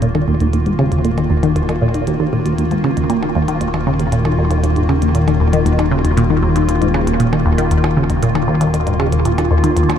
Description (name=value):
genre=ambient, sequencer-driven space music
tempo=117 BPM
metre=4/4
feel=straight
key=Eb minor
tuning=A4 = 438 Hz
part: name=evolving wavetable pad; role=sustained chords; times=0.0-10.0 s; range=Eb3 to Gb4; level=-20 LUFS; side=equal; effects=chorus, built-in reverb
part: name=resonant blip pluck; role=riff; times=0.0-9.9 s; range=Eb2 to Eb3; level=-15 LUFS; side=equal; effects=chorus, phaser, tape echo
part: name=fat analog bass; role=bass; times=0.0-10.0 s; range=Eb1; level=-20 LUFS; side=equal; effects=none
part: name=electronic hi-hat and percussion blips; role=percussion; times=0.0-10.0 s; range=none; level=-30 LUFS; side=right 4 dB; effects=tape echo
room=moderate echo chamber reverb, RT60 2.2 s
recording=echo-heavy mix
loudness=-13 LUFS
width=side -9 dB against mid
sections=0.0-10.0 A section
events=fade-in on ambient pad 0.0-10.0; fade-in on drum 0.0-10.0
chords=0.0 Ebm